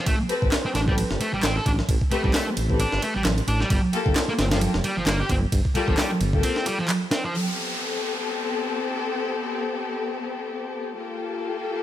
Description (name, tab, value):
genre	breakbeat, breaks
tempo	132 BPM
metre	4/4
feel	swing 56% on 16ths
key	A minor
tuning	A4 = 436 Hz
part	thick fuzz guitar	riff	0.0-7.3 s	F3 to A4	-26 LUFS	right 1 dB	distortion, overdrive, vintage 12-bit sampler grit, tape echo
part	dark detuned saw bass	bass	0.1-6.4 s	F1 to A1	-25 LUFS	equal	tube saturation
part	breakbeat sampler-style drum kit	drums	0.1-7.2 s	hi-hat, kick drum, ride cymbal, snare drum	-24 LUFS	equal	small room ambience
part	warm symphonic string section	stabs	0.3-11.8 s	Bb3 to B4	-28 LUFS	left 4 dB	tape echo
part	electronic handclaps	drums	0.5-7.0 s	none	-32 LUFS	equal	overdrive, low-pass filter on snare, small room ambience
part	downlifter	sound effects	7.3-11.0 s	none	-33 LUFS	equal	none
room	light reverb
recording	none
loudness	-22 LUFS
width	side -12 dB against mid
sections	0.0-7.3 A section; 7.3-11.8 B section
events	none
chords	0.1 Am9; 3.7 Gm9; 7.3 Am9; 11.0 Gm9